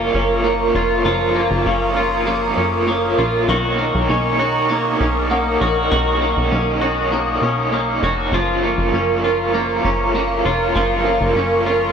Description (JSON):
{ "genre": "dream pop", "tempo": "99 BPM", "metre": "4/4", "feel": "straight", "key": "F# major", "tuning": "A4 = 437 Hz", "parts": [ { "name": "raw garage guitar", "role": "accompaniment", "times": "0.0-11.9 s", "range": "F#2 to C#5", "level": "-21 LUFS", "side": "right 1 dB", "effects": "overdrive, tremolo, lush chorus" }, { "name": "phased analog pad", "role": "sustained chords", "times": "0.0-11.9 s", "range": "A#4 to D#6", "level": "-21 LUFS", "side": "right 2 dB", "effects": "phaser, chorus" }, { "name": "twangy electric guitar", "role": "arpeggios", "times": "0.0-11.9 s", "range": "D#3 to F#4", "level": "-21 LUFS", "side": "left 3 dB", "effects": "lush chorus, ping-pong delay" }, { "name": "plucky analog bass", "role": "bass", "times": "0.0-11.9 s", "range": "E#1 to B1", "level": "-23 LUFS", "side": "equal", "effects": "none" }, { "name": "soft synth bell", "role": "texture", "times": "0.0-7.5 s", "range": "D#5 to C#6", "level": "-32 LUFS", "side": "equal", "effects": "none" } ], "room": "moderate plate reverb, RT60 3.7 s", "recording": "none", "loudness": "-15 LUFS", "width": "side -7 dB against mid", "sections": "0.0-11.9 A section", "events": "none", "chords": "0.0 F#maj7; 3.5 Bmaj9; 8.3 F#maj7" }